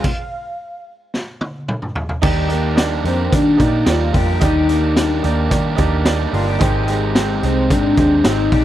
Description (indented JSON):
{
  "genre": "jangly indie pop",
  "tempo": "110 BPM",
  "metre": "4/4",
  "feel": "straight",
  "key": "Eb major",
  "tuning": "A4 = 438 Hz",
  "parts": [
    { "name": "warm velvety synth lead", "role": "melody", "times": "0.0-8.6 s", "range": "C4 to F5", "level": "-18 LUFS", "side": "left 1 dB", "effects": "chorus, slapback echo" },
    { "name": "crunchy overdriven guitar", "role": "accompaniment", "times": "0.0-8.6 s", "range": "Eb3 to G4", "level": "-25 LUFS", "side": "right 5 dB", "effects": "spring reverb" },
    { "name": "warm upright piano", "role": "accompaniment", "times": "0.0-8.6 s", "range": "Eb4 to D5", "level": "-24 LUFS", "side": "right 10 dB", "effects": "none" },
    { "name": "electric guitar through a small old amp", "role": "arpeggios", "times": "0.0-8.6 s", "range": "Eb3 to G4", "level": "-24 LUFS", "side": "left 6 dB", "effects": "none" },
    { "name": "raw garage drum kit", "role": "drums", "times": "0.0-8.6 s", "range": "crash cymbal, hi-hat, kick drum, snare drum, toms", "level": "-19 LUFS", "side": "equal", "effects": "none" },
    { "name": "vintage muted picked electric bass", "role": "bass", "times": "2.2-8.6 s", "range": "G1 to Eb3", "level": "-20 LUFS", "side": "equal", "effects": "none" }
  ],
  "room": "studio ambience",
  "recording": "dry, close 1970s-style studio recording",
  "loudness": "-14 LUFS",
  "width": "side -12 dB against mid",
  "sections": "0.0-2.2 A section; 2.2-8.6 B section",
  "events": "stop 0.0-2.2; drum fill 1.1-2.2",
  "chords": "0.0 Dbmaj7 (rootless); 2.2 Ebmaj7; 6.6 Abmaj7",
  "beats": "| 0.04 0.59 1.14 1.69 | 2.23 2.78 3.33 3.88 | 4.42 4.97 5.51 6.06 | 6.61 7.16 7.70 8.25"
}